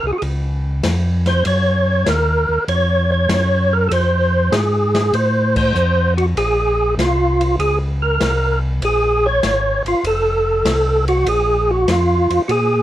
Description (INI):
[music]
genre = soul jazz organ trio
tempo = 98 BPM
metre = 4/4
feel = swing 69% on 8ths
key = Bb minor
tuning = A4 = 440 Hz
[part]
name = percussive tonewheel organ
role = melody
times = 0.0-12.8 s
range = F4 to Db5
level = -16 LUFS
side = right 1 dB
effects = slow rotary speaker, overdrive, chorus vibrato
[part]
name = mellow tonewheel organ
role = bass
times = 0.0-12.8 s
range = F1 to Bb2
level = -18 LUFS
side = equal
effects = slow rotary speaker
[part]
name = open jazz drum kit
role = drums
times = 0.2-12.7 s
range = crash cymbal, hi-hat, kick drum, ride cymbal, snare drum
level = -26 LUFS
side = left 1 dB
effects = none
[sound]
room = light reverb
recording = worn, warbling old tape, cassette tape, warbly pitch drift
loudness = -14 LUFS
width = side -13 dB against mid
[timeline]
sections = 0.0-11.3 A section; 11.3-12.8 A section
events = band accent 5.4-5.8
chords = 0.0 Bbm (rootless); 1.4 Gbmaj7; 3.9 F; 6.4 Bbm7; 10.0 F; 11.3 Bb7(no3)